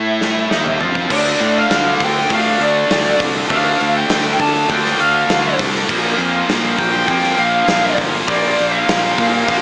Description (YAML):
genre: hard rock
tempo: 100 BPM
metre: 4/4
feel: straight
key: D minor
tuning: A4 = 441 Hz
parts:
  - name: biting lead guitar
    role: melody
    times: 0.0-9.6 s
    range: D5 to A5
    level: -17 LUFS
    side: equal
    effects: overdrive, slapback echo
  - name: heavy high-gain guitar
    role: riff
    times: 0.0-9.6 s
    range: Bb2 to A4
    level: -17 LUFS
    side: equal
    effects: distortion
  - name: fuzz fingered electric bass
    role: bass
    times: 0.0-9.6 s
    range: G1 to D3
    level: -21 LUFS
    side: equal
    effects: overdrive
  - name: gated 80s drum kit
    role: drums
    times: 0.2-9.6 s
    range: crash cymbal, hi-hat, kick drum, snare drum, toms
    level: -20 LUFS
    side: equal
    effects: none
  - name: overdriven tonewheel organ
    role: sustained chords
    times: 1.1-9.6 s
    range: Bb3 to F5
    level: -26 LUFS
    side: equal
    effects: none
room: moderate studio reverb, RT60 0.6 s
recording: small speaker sound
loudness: -12 LUFS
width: side -25 dB against mid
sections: 0.0-1.1 A section; 1.1-9.6 B section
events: drum fill 0.0-1.1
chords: 0.0 A5; 0.5 Ebsus2; 1.1 Dm; 5.9 Bb5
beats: 0.50 | 1.10 1.70 2.30 2.90 | 3.50 4.10 4.70 5.29 | 5.89 6.49 7.09 7.69 | 8.29 8.88 9.48